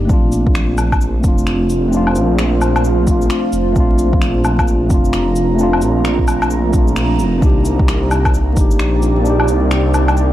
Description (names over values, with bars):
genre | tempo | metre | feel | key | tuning
future garage | 131 BPM | 4/4 | swing 62% on 16ths | unclear | A4 = 440 Hz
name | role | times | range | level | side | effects
tine electric piano | accompaniment | 0.0-10.3 s | A3 to G4 | -18 LUFS | equal | sidechain pumping, tape echo
swelling detuned saw bass | bass | 0.0-10.3 s | F1 to C2 | -16 LUFS | equal | sidechain pumping
electronic kick drum | drums | 0.1-8.7 s | none | -15 LUFS | equal | none
electronic shaker, cabasa, finger snaps and woodblock | drums | 0.1-10.3 s | none | -22 LUFS | left 1 dB | none
deep dark ambient pad | sustained chords | 1.4-10.3 s | C4 to Bb5 | -23 LUFS | right 3 dB | chorus, built-in reverb, sidechain pumping
room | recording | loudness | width
light reverb, digital ambience | vinyl crackle | -12 LUFS | side -13 dB against mid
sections
0.0-7.4 A section; 7.4-10.3 B section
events
kick drops out 7.0-7.4; band accent 7.0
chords
0.1 Bbmaj9; 7.4 Cm9